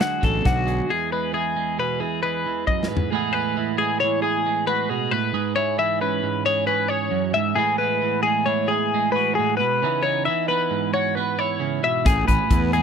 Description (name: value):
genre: math rock and midwest emo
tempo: 134 BPM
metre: 5/4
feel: straight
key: unclear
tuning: A4 = 440 Hz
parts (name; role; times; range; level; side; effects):
- twelve-string electric guitar; accompaniment; 0.0-12.8 s; E2 to G#4; -24 LUFS; right 13 dB; none
- twelve-string electric guitar; arpeggios; 0.0-12.8 s; F#4 to E5; -22 LUFS; left 5 dB; none
- modern studio drum kit; drums; 0.0-3.1, 12.1-12.8 s; hi-hat, kick drum, snare drum, toms; -22 LUFS; left 1 dB; none
- fuzz fingered electric bass; bass; 0.2-0.8, 12.1-12.8 s; A1 to E2; -23 LUFS; left 1 dB; overdrive
room: small room ambience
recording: dry, close 1970s-style studio recording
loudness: -20 LUFS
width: side -7 dB against mid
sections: 0.0-3.1 A section; 3.1-12.8 B section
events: break 0.9-3.1; drum fill 2.7-3.1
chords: 0.0 Dadd9(#11); 0.9 Eadd9; 3.1 Amaj7sus2; 5.3 E6/G#; 7.6 Amaj7sus2; 9.8 C#m9; 12.0 Amaj7sus2